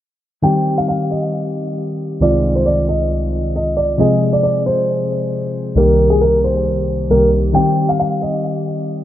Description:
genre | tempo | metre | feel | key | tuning
hip hop | 135 BPM | 4/4 | half-time | C minor | A4 = 440 Hz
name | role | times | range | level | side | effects
dark grand piano | melody | 0.4-9.0 s | Ab4 to G5 | -17 LUFS | right 1 dB | low-pass filter, digital delay
warbly lo-fi synth keys | accompaniment | 0.4-9.0 s | C2 to Ab4 | -16 LUFS | left 1 dB | chorus, low-pass filter
room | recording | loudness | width
light reverb, small room ambience | dark, warm production, low-pass filter | -14 LUFS | side -12 dB against mid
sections
0.4-9.0 A section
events
none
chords
0.4 Cm; 2.2 Ab6/C; 4.0 Fm/C; 5.8 Eb/C; 7.5 Cm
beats
| 0.44 0.88 1.33 1.77 | 2.22 2.66 3.10 3.55 | 3.99 4.44 4.88 5.33 | 5.77 6.22 6.66 7.10 | 7.55 7.99 8.44 8.88

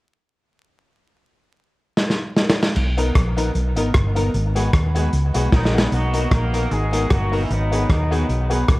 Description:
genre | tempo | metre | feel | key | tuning
ska | 152 BPM | 4/4 | swing 55% on 8ths | B major | A4 = 440 Hz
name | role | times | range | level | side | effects
crunchy breakbeat drum kit | drums | 2.0-8.8 s | crash cymbal, hi-hat, kick drum, rim click, snare drum | -20 LUFS | equal | none
hollow-body short-scale fingered electric bass | bass | 2.8-8.8 s | D#1 to D#2 | -20 LUFS | equal | tube saturation
clean electric guitar | accompaniment | 3.0-8.7 s | F#3 to B4 | -29 LUFS | right 2 dB | dub echo
honky-tonk upright piano | stabs | 3.0-8.7 s | B3 to A#4 | -26 LUFS | left 3 dB | dub echo
mellow horn section | melody | 5.5-8.7 s | D#3 to A#4 | -25 LUFS | equal | none
room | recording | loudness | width
light reverb, studio reverb | dark, warm production, vinyl crackle | -17 LUFS | side -19 dB against mid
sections
1.2-2.8 A section; 2.8-5.9 B section; 5.9-8.8 C section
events
drum fill 2.0-2.8, 5.5-5.9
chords
1.2 N.C.; 2.8 Bmaj7; 4.3 G#m7; 5.9 Bmaj7; 7.5 G#m7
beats
| 1.18 1.58 1.97 2.37 | 2.76 3.16 3.55 3.95 | 4.34 4.74 5.13 5.53 | 5.92 6.32 6.71 7.11 | 7.50 7.89 8.29 8.69

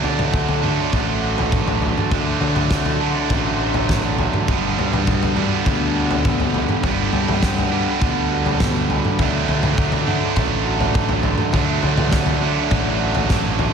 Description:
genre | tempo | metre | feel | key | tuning
post-rock | 102 BPM | 4/4 | straight | unclear | A4 = 439 Hz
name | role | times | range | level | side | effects
glassy FM pad | sustained chords | 0.0-13.7 s | F#4 to C6 | -32 LUFS | left 2 dB | ensemble chorus, built-in reverb, phaser
electric guitar through a small old amp | arpeggios | 0.0-13.7 s | D3 to F#4 | -27 LUFS | left 5 dB | slapback echo, analog delay
distorted electric guitar | riff | 0.0-13.7 s | G2 to D4 | -21 LUFS | right 5 dB | overdrive, slapback echo
fuzz fingered electric bass | bass | 0.0-13.7 s | G1 to D3 | -24 LUFS | equal | overdrive
loose indie drum kit | drums | 0.0-13.7 s | kick drum, snare drum, toms | -21 LUFS | left 1 dB | none
room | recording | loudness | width
wet recital hall reverb, RT60 1.6 s | big arena sound | -17 LUFS | side -6 dB against mid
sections
0.0-13.7 A section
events
none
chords
0.0 D7; 4.5 Gmaj7; 9.2 D7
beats
0.34 0.93 1.52 | 2.12 2.71 3.30 3.89 | 4.48 5.07 5.66 6.25 | 6.84 7.43 8.02 8.61 | 9.20 9.78 10.37 10.96 | 11.55 12.13 12.72 13.31

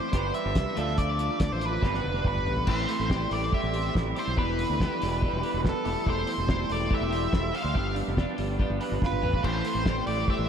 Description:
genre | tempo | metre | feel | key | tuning
indie rock | 142 BPM | 4/4 | straight | unclear | A4 = 439 Hz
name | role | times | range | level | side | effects
octave-fuzz lead guitar | melody | 0.0-10.5 s | A4 to F5 | -31 LUFS | right 1 dB | distortion, tape echo
electric guitar through a small old amp | riff | 0.0-10.5 s | E2 to C5 | -33 LUFS | right 8 dB | ensemble chorus, tape echo
twelve-string electric guitar | riff | 0.0-10.5 s | E3 to A4 | -34 LUFS | left 8 dB | lush chorus
growling fingered electric bass | bass | 0.1-10.5 s | E1 to D2 | -31 LUFS | equal | overdrive
cloth-damped thuddy drum kit | drums | 0.1-10.4 s | crash cymbal, hi-hat, kick drum, snare drum, toms | -30 LUFS | equal | none
room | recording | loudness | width
moderate cathedral reverb, RT60 4.7 s | dreamy mix soaked in reverb | -25 LUFS | side -8 dB against mid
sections
0.0-2.7 A section; 2.7-10.5 B section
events
drum fill 1.8-2.7, 9.0-9.4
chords
0.1 G; 0.8 Dm; 1.8 G; 2.7 Am7; 4.4 Em7; 5.9 C6/E; 7.8 G7; 9.4 Am7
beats
0.14 0.56 | 0.98 1.41 1.83 2.26 | 2.68 3.10 3.53 3.95 | 4.37 4.80 5.22 5.64 | 6.06 6.49 6.91 7.33 | 7.75 8.17 8.60 9.02 | 9.44 9.86 10.28

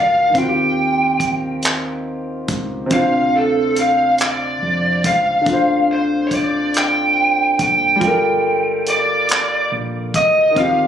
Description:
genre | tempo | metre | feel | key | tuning
slow six-eight R&B | 47 BPM (dotted quarters) | 6/8 | straight | G minor | A4 = 440 Hz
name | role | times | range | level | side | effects
lead guitar through a small cranked amp | melody | 0.0-10.9 s | A4 to G5 | -16 LUFS | right 1 dB | overdrive, tape echo
clear concert grand piano | accompaniment | 0.0-10.9 s | C3 to A5 | -20 LUFS | left 1 dB | none
hollow-body short-scale fingered electric bass | bass | 0.0-10.9 s | F#1 to F2 | -29 LUFS | right 1 dB | none
damped 70s drum kit | drums | 0.3-10.8 s | handclaps, hi-hat, kick drum | -20 LUFS | equal | none
room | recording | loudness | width
light reverb | recorded on a phone in the room, club reverb, compression | -14 LUFS | side -9 dB against mid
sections
0.0-10.9 A section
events
none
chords
0.4 Eb69; 2.9 Dm7; 8.0 Gm9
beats
| 0.35 1.63 | 2.91 4.18 | 5.46 6.74 | 8.01 9.29 | 10.57

